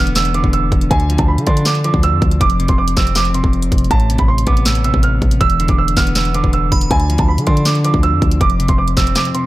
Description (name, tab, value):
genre	hip hop, trap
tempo	160 BPM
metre	4/4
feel	half-time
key	unclear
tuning	A4 = 440 Hz
part	dark concert grand piano	melody	0.0-9.5 s	G#5 to F6	-19 LUFS	right 5 dB	digital delay
part	clean electric guitar	accompaniment	0.0-9.5 s	E2 to D4	-19 LUFS	left 2 dB	none
part	hard-hitting 808-style bass	bass	0.0-9.2 s	E1 to D3	-17 LUFS	equal	none
part	trap drum kit	drums	0.1-9.4 s	handclaps, hi-hat, kick drum, snare drum	-16 LUFS	equal	none
part	delicate synth tine bell	second line	6.7-6.9 s	B5	-26 LUFS	right 2 dB	chorus, phaser, digital delay
room	digital ambience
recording	dark, warm production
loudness	-12 LUFS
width	side -16 dB against mid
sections	0.0-9.5 A section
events	kick muted 9.2-9.5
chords	0.0 E5; 0.9 Dm; 2.4 F5; 3.9 Amadd9; 5.4 E5; 6.9 Dm; 8.4 F5